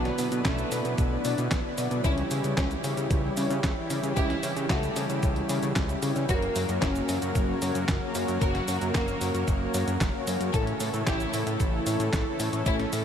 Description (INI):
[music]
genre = italo disco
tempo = 113 BPM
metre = 4/4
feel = straight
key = unclear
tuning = A4 = 439 Hz
[part]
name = warm studio violin section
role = melody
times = 0.0-13.0 s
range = A3 to A#4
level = -34 LUFS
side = equal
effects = tape echo
[part]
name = warm analog pad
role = sustained chords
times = 0.0-13.0 s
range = C#3 to B4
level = -32 LUFS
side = right 1 dB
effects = chorus, vintage 12-bit sampler grit
[part]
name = mellow synth brass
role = stabs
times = 0.0-12.8 s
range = G3 to D5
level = -33 LUFS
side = left 3 dB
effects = chorus, diffuse ambient delay
[part]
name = fat analog bass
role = bass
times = 0.0-13.0 s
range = F#1 to C#3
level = -31 LUFS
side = equal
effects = tube saturation, diffuse ambient delay
[part]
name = detuned 8-bit digital drum machine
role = drums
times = 0.1-13.0 s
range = cabasa, handclaps, hi-hat, snare drum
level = -34 LUFS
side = equal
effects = studio reverb
[part]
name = electronic kick drum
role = drums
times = 0.5-12.8 s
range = none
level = -28 LUFS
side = equal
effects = studio reverb
[sound]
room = moderate huge ambient reverb, RT60 8.3 s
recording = dreamy mix soaked in reverb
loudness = -25 LUFS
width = side -8 dB against mid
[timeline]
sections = 0.0-13.0 A section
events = none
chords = 0.0 Bm; 2.0 C#dim; 6.3 F#; 10.5 A